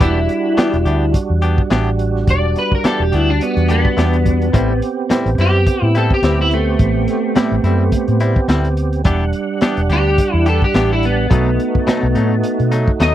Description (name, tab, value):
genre	straight-eighth soul blues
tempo	106 BPM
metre	4/4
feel	swing 56% on 16ths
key	E minor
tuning	A4 = 440 Hz
part	electric guitar at the edge of break-up	melody	0.0-13.1 s	A3 to D#5	-18 LUFS	left 1 dB	ensemble chorus
part	percussive tonewheel organ	accompaniment	0.0-13.1 s	G3 to F#5	-21 LUFS	right 6 dB	overdrive, chorus vibrato, slow rotary speaker
part	direct-recorded clean electric guitar	stabs	0.0-13.1 s	A2 to G4	-22 LUFS	left 4 dB	none
part	vintage muted fingered electric bass	bass	0.0-13.1 s	E1 to B2	-16 LUFS	equal	none
part	crunchy breakbeat drum kit	drums	0.0-13.1 s	hi-hat, kick drum, snare drum	-16 LUFS	equal	none
room	little or no reverb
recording	dry, close 1970s-style studio recording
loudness	-13 LUFS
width	side -12 dB against mid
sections	0.0-13.1 A section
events	clean electric guitar solo 0.0-13.1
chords	0.0 Em7; 4.5 Am7; 9.1 Em7; 11.3 B7